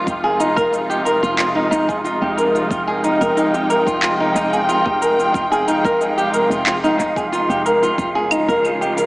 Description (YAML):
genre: organic downtempo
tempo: 91 BPM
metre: 4/4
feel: straight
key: F minor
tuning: A4 = 441 Hz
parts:
  - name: muted studio string section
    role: sustained chords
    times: 0.0-9.1 s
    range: C3 to G5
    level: -22 LUFS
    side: equal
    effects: sidechain pumping
  - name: flamenco guitar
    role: arpeggios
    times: 0.0-9.1 s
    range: Eb4 to Bb4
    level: -17 LUFS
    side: equal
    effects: dub echo
  - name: wind-like tuned noise texture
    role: texture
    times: 0.0-9.1 s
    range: F5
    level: -27 LUFS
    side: right 2 dB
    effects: built-in reverb
  - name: woody FM bass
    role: bass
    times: 0.1-8.6 s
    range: F1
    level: -27 LUFS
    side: equal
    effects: sidechain pumping
  - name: electronic kick drum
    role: drums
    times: 0.1-8.1 s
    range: none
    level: -29 LUFS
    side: equal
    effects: none
  - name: electronic shaker, handclaps and claves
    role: drums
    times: 0.1-9.1 s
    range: none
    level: -24 LUFS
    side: equal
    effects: overdrive, analog delay
room: wet echo chamber reverb, RT60 1.8 s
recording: echo-heavy mix, small speaker sound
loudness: -15 LUFS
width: side -22 dB against mid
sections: 0.0-9.1 A section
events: none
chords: 0.0 Fm7; 8.0 Db/F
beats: | 0.07 0.73 1.39 2.05 | 2.71 3.37 4.03 4.68 | 5.34 6.00 6.66 7.32 | 7.98 8.64